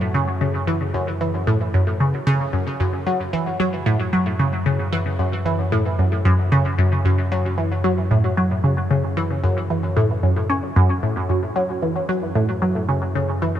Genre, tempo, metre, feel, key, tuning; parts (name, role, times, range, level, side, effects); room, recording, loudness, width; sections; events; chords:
ambient, sequencer-driven space music; 113 BPM; 4/4; straight; F# minor; A4 = 440 Hz
warm sub bass; bass; 0.0-13.6 s; F#2; -25 LUFS; equal
resonant blip pluck; riff; 0.1-13.5 s; F#2 to C#4; -19 LUFS; equal; phaser, lush chorus, tape echo
moderate huge ambient reverb, RT60 8.6 s; cassette tape; -18 LUFS; side -11 dB against mid
0.0-13.6 A section